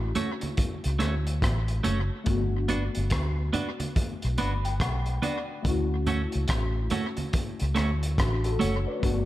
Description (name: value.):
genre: lovers rock reggae.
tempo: 71 BPM.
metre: 4/4.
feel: swing 61% on 16ths.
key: D major.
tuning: A4 = 440 Hz.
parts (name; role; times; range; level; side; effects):
tine electric piano; accompaniment; 0.0-9.3 s; A3 to B5; -33 LUFS; left 3 dB; ensemble chorus.
vintage muted fingered electric bass; bass; 0.0-9.3 s; F#1 to D2; -27 LUFS; equal; none.
twelve-string electric guitar; stabs; 0.2-8.7 s; A3 to F#4; -31 LUFS; right 4 dB; spring reverb.
crunchy breakbeat drum kit; drums; 0.2-9.3 s; hi-hat, kick drum, rim click; -30 LUFS; equal; gated reverb, tape echo.
congas; percussion; 0.2-9.3 s; none; -38 LUFS; right 2 dB; none.
room: little or no reverb.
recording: none.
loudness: -25 LUFS.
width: side -15 dB against mid.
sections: 0.0-9.3 A section.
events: tine electric piano fill 4.0-5.7.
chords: 0.0 Dmaj7; 2.3 Gmaj7; 5.7 Dmaj7.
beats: 0.58 1.43 | 2.27 3.12 3.96 4.81 | 5.65 6.50 7.34 8.19 | 9.03.